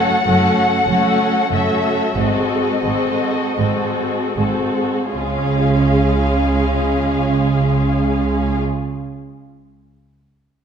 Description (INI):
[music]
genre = classical, slow romantic movement for string orchestra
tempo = 37-49 BPM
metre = 4/4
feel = rubato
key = unclear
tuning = A4 = 438 Hz
[part]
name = warm studio violin section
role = melody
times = 0.0-8.6 s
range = D#5 to F#5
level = -22 LUFS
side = left 3 dB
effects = none
[part]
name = warm studio violin section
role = second line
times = 0.0-8.6 s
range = E#4 to A4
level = -23 LUFS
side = left 3 dB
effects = none
[part]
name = rich studio viola section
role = accompaniment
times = 0.0-8.6 s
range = G#3 to C#4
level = -21 LUFS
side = right 1 dB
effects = none
[part]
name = dark studio double bass section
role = bass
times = 0.3-8.6 s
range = F#1 to C#2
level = -23 LUFS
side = right 3 dB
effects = none
[part]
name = warm studio cello section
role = bass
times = 0.3-8.6 s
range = F#2 to C#3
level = -21 LUFS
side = right 3 dB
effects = none
[sound]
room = wet recital hall reverb, RT60 1.7 s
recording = recorded in a church or concert hall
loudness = -15 LUFS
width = side -7 dB against mid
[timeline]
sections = 0.0-5.1 A section; 5.1-10.6 B section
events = slowing down 0.0-5.1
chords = 0.0 F#m; 2.2 G#7b9; 5.1 C#